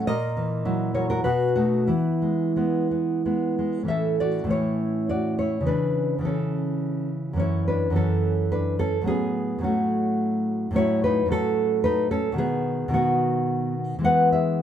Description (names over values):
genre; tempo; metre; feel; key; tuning
romantic piece for solo classical guitar; 86-113 BPM; 3/4; rubato; E major, A major from 3.9 s; A4 = 438 Hz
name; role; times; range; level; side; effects
nylon-string guitar; solo; 0.0-14.6 s; F#2 to F#5; -21 LUFS; equal; none
room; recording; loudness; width
moderate studio reverb, RT60 0.7 s; band playing live in one room; -21 LUFS; side -9 dB against mid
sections
0.0-3.9 A section; 3.9-14.6 B section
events
none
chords
0.1 F#7/A#; 1.3 B7; 1.9 E; 3.9 A; 5.7 A/C#; 9.1 F#m/A; 10.8 F#m7/A; 12.4 B; 14.1 E